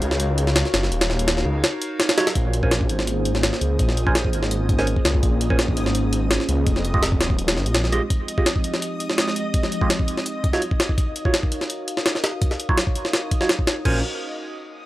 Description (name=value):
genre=drum and bass, jungle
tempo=167 BPM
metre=4/4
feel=straight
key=Bb minor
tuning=A4 = 440 Hz
part: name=detuned saw bass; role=bass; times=0.0-8.0, 13.9-14.0 s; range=Eb1 to Db2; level=-22 LUFS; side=equal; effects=none
part: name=jungle sampler-style drum kit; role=drums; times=0.0-13.9 s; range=crash cymbal, hi-hat, kick drum, snare drum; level=-21 LUFS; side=equal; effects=none
part: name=overdriven tine electric piano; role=stabs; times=2.2-14.0 s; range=Gb3 to Ab5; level=-27 LUFS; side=right 2 dB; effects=phaser, low-pass filter, dub echo
part: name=backwards swelling texture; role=texture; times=3.2-13.9 s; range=Eb5 to Eb6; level=-35 LUFS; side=left 1 dB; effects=built-in reverb
room=little or no reverb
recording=dry, gritty hardware recording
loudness=-19 LUFS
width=side -16 dB against mid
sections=0.0-2.4 A section; 2.4-13.9 B section; 13.9-14.9 C section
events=drop 0.0-2.4; filter sweep on tine electric piano 2.4-13.9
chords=0.0 Ebm9; 2.4 Bbm9; 6.7 Fm9; 10.3 Ebm9; 13.9 Bbm9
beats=0.20 0.56 | 0.92 1.28 1.64 2.00 | 2.36 2.71 3.07 3.43 | 3.79 4.15 4.51 4.87 | 5.23 5.59 5.95 6.31 | 6.67 7.03 7.39 7.75 | 8.10 8.46 8.82 9.18 | 9.54 9.90 10.26 10.62 | 10.98 11.34 11.70 12.06 | 12.42 12.78 13.13 13.49 | 13.85